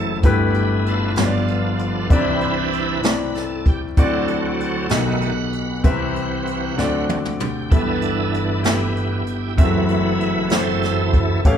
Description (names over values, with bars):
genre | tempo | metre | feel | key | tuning
slow gospel | 64 BPM (dotted quarters) | 6/8 | straight | G major | A4 = 440 Hz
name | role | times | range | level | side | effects
warm grand piano | accompaniment | 0.0-11.6 s | F#1 to E#5 | -21 LUFS | left 2 dB | none
bright tonewheel organ | sustained chords | 0.0-11.6 s | F#2 to F#5 | -22 LUFS | right 3 dB | slow rotary speaker, chorus vibrato
jazz brush drum kit | drums | 0.2-11.6 s | hi-hat, kick drum, snare drum, toms | -18 LUFS | equal | none
room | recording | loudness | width
moderate recital hall reverb, RT60 1.4 s | recorded in a church or concert hall | -17 LUFS | side -8 dB against mid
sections
0.0-11.6 A section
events
tonewheel organ solo 0.0-11.6; drum fill 6.8-7.7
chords
0.2 G69; 1.2 G7; 2.1 Cmaj9; 4.0 D9; 4.9 B7b13; 5.8 Cmaj7; 6.8 D7; 7.7 G69; 9.6 F#m7b5